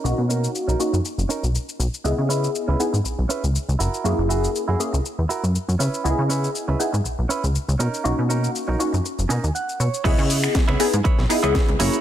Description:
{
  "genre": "filtered disco house",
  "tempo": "120 BPM",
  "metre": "4/4",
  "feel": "swing 55% on 16ths",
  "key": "C# dorian",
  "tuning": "A4 = 441 Hz",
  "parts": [
    { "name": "funky polysynth comp", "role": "accompaniment", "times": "0.0-12.0 s", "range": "A#3 to D#5", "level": "-24 LUFS", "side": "left 1 dB", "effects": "chorus, phaser, sidechain pumping, low-pass filter" },
    { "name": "direct-recorded clean electric guitar", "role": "riff", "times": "0.0-12.0 s", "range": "C#4 to G#5", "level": "-28 LUFS", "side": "right 5 dB", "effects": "sidechain pumping, low-pass filter" },
    { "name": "plucky analog bass", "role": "bass", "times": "0.0-11.9 s", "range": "F#1 to C#3", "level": "-22 LUFS", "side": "equal", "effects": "sidechain pumping, low-pass filter" },
    { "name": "house drum kit", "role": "drums", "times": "0.1-12.0 s", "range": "crash cymbal, finger snaps, hi-hat, shaker, snare drum", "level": "-29 LUFS", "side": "left 2 dB", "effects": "overdrive, sidechain pumping on perc, sidechain pumping on hats, sidechain pumping on cymbals" },
    { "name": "electronic kick drum", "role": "drums", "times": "10.0-11.7 s", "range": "none", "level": "-20 LUFS", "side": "equal", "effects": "overdrive" }
  ],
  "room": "light reverb",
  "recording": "none",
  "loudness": "-19 LUFS",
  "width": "side -11 dB against mid",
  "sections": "0.0-10.0 A section; 10.0-12.0 B section",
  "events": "filter sweep 0.0-10.0; clean electric guitar fill 9.0-10.0; drop 10.0-12.0",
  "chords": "0.0 Bmaj9; 2.0 C#m7; 3.8 F#7; 5.8 C#m7; 7.8 Bmaj9; 10.0 C#m7"
}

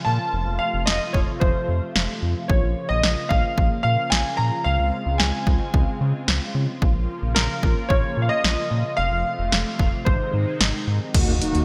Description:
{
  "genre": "synth-pop",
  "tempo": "111 BPM",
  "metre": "4/4",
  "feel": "straight",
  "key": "Bb minor",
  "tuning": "A4 = 435 Hz",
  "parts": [
    { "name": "clear concert grand piano", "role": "melody", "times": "0.0-10.8 s", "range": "Bb4 to Bb5", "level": "-28 LUFS", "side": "equal", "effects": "analog chorus, delay" },
    { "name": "warm analog pad", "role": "sustained chords", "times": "0.0-11.6 s", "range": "C3 to Gb4", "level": "-32 LUFS", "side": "equal", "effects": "chorus" },
    { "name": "round analog bass", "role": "bass", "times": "0.1-11.6 s", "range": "F1 to Db3", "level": "-26 LUFS", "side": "equal", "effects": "none" },
    { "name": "punchy analog drum machine", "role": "drums", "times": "0.9-11.6 s", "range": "crash cymbal, hi-hat, kick drum, snare drum", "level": "-24 LUFS", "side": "equal", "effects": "none" },
    { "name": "mellow synth brass", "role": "accompaniment", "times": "11.1-11.6 s", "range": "Bb3 to Gb4", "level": "-26 LUFS", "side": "equal", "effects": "chorus" },
    { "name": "impact", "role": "sound effects", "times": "11.2-11.6 s", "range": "none", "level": "-31 LUFS", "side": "equal", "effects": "none" }
  ],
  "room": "moderate lush hall reverb, RT60 1.7 s, digital ambience",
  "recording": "bright 1980s-style digital production",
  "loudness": "-22 LUFS",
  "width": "mono",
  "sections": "0.0-11.1 A section",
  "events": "impact 11.1-11.6",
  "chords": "0.3 F; 2.5 Bbm; 4.7 Dbmaj7; 6.8 Bbm; 9.0 F; 10.1 Ab; 11.1 Ebm"
}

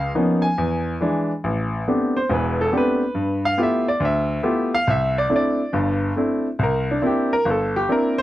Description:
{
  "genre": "solo jazz",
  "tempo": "140 BPM",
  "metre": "4/4",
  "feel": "swing 66% on 8ths",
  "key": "A minor",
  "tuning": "A4 = 440 Hz",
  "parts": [
    { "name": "clear grand piano", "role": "solo", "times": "0.0-8.2 s", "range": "E1 to Ab5", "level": "-18 LUFS", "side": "equal", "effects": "none" }
  ],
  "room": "light reverb",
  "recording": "dry, close 1970s-style studio recording",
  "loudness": "-18 LUFS",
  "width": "side -14 dB against mid",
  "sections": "0.0-1.4 A section; 1.4-8.2 B section",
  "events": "grand piano solo 1.4-8.2",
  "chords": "0.0 Db13; 0.6 E7; 1.4 Am11; 3.2 G13; 4.9 C69; 6.6 C9"
}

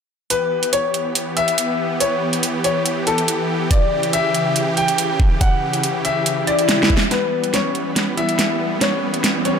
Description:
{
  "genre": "heavy wobble dubstep",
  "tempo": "141 BPM",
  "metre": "4/4",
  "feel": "half-time",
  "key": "E dorian",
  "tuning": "A4 = 441 Hz",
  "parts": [
    { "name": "warm grand piano", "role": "melody", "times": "0.3-9.6 s", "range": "B3 to G5", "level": "-20 LUFS", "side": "left 3 dB", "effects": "ping-pong delay" },
    { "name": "supersaw chords", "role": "sustained chords", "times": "0.3-9.6 s", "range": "C#3 to G4", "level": "-22 LUFS", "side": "right 1 dB", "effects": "sidechain pumping" },
    { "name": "dubstep drum kit", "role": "drums", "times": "0.3-9.5 s", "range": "hi-hat, snare drum", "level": "-20 LUFS", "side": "right 1 dB", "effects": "studio reverb" },
    { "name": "electronic kick drum", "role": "drums", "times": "3.7-7.0 s", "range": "none", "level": "-16 LUFS", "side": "equal", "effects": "studio reverb" },
    { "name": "swell and riser", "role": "sound effects", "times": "6.4-9.6 s", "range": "none", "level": "-26 LUFS", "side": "equal", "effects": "none" }
  ],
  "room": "light reverb, digital ambience",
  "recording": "none",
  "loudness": "-16 LUFS",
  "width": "side -7 dB against mid",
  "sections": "0.3-7.1 A section; 7.1-9.6 B section",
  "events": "swell 6.4-7.1; drum fill 6.7-7.1, 7.1-9.6; build-up 7.1-9.6; riser 7.1-9.6",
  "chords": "0.3 Em"
}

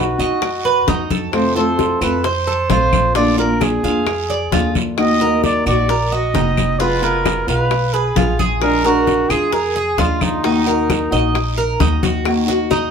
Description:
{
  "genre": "latin, Cuban son and guajira",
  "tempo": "132 BPM",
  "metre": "4/4",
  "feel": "straight",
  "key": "Eb harmonic minor",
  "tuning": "A4 = 440 Hz",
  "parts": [
    { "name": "breathy trumpet", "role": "melody", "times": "0.0-11.8 s", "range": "Eb4 to Eb5", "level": "-20 LUFS", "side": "right 2 dB", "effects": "none" },
    { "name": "nylon-string guitar", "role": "accompaniment", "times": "0.0-12.9 s", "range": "C3 to F#4", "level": "-20 LUFS", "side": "left 1 dB", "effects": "none" },
    { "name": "Cuban tres", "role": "arpeggios", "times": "0.0-12.9 s", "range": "Cb4 to F5", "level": "-21 LUFS", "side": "right 2 dB", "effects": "none" },
    { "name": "upright bass", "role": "bass", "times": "0.0-12.9 s", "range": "F1 to F#2", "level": "-22 LUFS", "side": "right 1 dB", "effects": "none" },
    { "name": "guiro", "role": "percussion", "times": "0.2-12.9 s", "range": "none", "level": "-30 LUFS", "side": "right 5 dB", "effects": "none" },
    { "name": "bongos", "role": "percussion", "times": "0.4-12.9 s", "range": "none", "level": "-24 LUFS", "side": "left 6 dB", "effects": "none" },
    { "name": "claves", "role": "percussion", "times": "0.4-12.5 s", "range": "none", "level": "-29 LUFS", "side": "left 4 dB", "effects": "none" },
    { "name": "congas", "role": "percussion", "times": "0.4-12.9 s", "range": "none", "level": "-23 LUFS", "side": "left 3 dB", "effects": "none" }
  ],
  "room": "moderate small room reverb, RT60 0.5 s",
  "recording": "band playing live in one room",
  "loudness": "-14 LUFS",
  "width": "side -6 dB against mid",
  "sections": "0.0-12.3 A section",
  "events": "none",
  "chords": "0.0 B; 1.3 F; 3.2 Bb; 5.0 Ebm; 6.8 Fdim; 8.6 Bb7; 10.4 Ebm"
}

